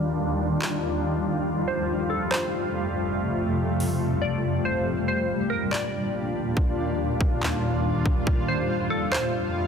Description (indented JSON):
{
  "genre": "hip hop, atmospheric cloud-rap",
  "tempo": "141 BPM",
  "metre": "4/4",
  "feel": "half-time",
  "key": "Eb lydian",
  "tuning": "A4 = 440 Hz",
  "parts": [
    { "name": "granular cloud pad", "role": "sustained chords", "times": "0.0-9.7 s", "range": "Eb2 to F4", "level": "-24 LUFS", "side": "equal", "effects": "built-in reverb, sidechain pumping, low-pass filter" },
    { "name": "trap drum kit", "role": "drums", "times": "0.6-9.2 s", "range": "handclaps, hi-hat, kick drum", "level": "-26 LUFS", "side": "equal", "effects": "none" },
    { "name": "glassy wavetable pluck", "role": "melody", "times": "1.7-9.7 s", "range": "A4 to D5", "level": "-29 LUFS", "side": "equal", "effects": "chorus, low-pass filter, tape echo" }
  ],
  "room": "moderate lush hall reverb, RT60 1.9 s, digital ambience",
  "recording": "dense, heavily limited modern master",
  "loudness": "-23 LUFS",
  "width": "side -6 dB against mid",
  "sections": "0.0-9.7 A section",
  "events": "filter sweep 0.0-9.7; drums muted 4.0-4.9",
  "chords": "0.0 Ebmaj7; 1.5 Fadd9; 4.9 Ebmaj7; 8.3 Fadd9",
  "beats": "0.18 0.61 1.03 | 1.46 1.89 2.31 2.74 | 3.16 3.59 4.01 4.44 | 4.87 5.29 5.72 6.14 | 6.57 6.99 7.42 7.84 | 8.27 8.70 9.12 9.55"
}